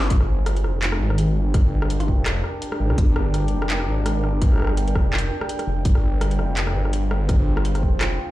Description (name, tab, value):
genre	half-time drum and bass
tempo	167 BPM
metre	4/4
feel	swing 56% on 16ths, half-time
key	G phrygian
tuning	A4 = 443 Hz
part	deep dark ambient pad	sustained chords	0.0-8.3 s	D4 to G5	-29 LUFS	equal	chorus, built-in reverb, vintage 12-bit sampler grit, sidechain pumping
part	phased detuned saw bass	bass	0.0-8.2 s	F1 to D2	-21 LUFS	equal	phaser
part	drum and bass drum kit	drums	0.1-8.1 s	handclaps, hi-hat, rim click	-28 LUFS	equal	none
part	electronic kick drum	drums	0.1-7.9 s	none	-18 LUFS	equal	none
room	light reverb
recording	played on a big sound system in a bare room, large studio reverb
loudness	-19 LUFS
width	side -16 dB against mid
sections	0.0-8.3 A section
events	none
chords	0.1 Gm; 5.9 Fmadd9